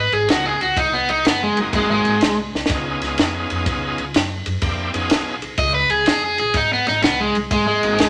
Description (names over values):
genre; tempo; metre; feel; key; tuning
electric blues shuffle; 124 BPM; 4/4; swing 66% on 8ths; unclear; A4 = 443 Hz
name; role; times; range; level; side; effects
crunchy overdriven guitar; melody; 0.0-2.4, 5.6-8.1 s; Ab3 to Eb5; -20 LUFS; equal; none
upright bass; bass; 0.0-8.1 s; Gb1 to Gb2; -31 LUFS; equal; none
compact cocktail drum kit; drums; 0.1-8.1 s; kick drum, ride cymbal, snare drum; -24 LUFS; equal; none
bright tonewheel organ; accompaniment; 0.3-8.1 s; Bb3 to Ab4; -27 LUFS; equal; overdrive, fast rotary speaker
room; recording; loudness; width
wet studio reverb, RT60 0.9 s; none; -19 LUFS; mono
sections
0.0-8.1 A section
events
overdriven electric guitar solo 0.0-8.1; drum fill 2.5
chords
0.0 Ab9; 2.7 Db9; 6.6 Ab9